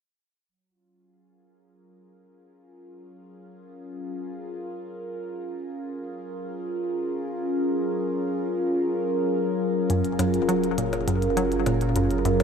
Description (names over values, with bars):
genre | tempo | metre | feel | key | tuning
ambient, sequencer-driven space music | 102 BPM | 4/4 | straight | F# major | A4 = 440 Hz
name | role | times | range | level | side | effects
sweeping resonant pad | sustained chords | 0.5-12.4 s | F#3 to A#4 | -26 LUFS | equal | chorus, phaser
tight sequenced synth | riff | 9.9-12.4 s | F#2 to F#3 | -24 LUFS | equal | chorus, ping-pong delay
warm sub bass | bass | 9.9-12.4 s | F#1 | -32 LUFS | equal | none
electronic hi-hat and percussion blips | percussion | 9.9-12.4 s | none | -35 LUFS | left 4 dB | overdrive, ping-pong delay
room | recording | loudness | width
moderate lush hall reverb, RT60 3.0 s | none | -24 LUFS | side -6 dB against mid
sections
0.5-9.9 A section; 9.9-12.4 B section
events
none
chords
0.5 F#maj7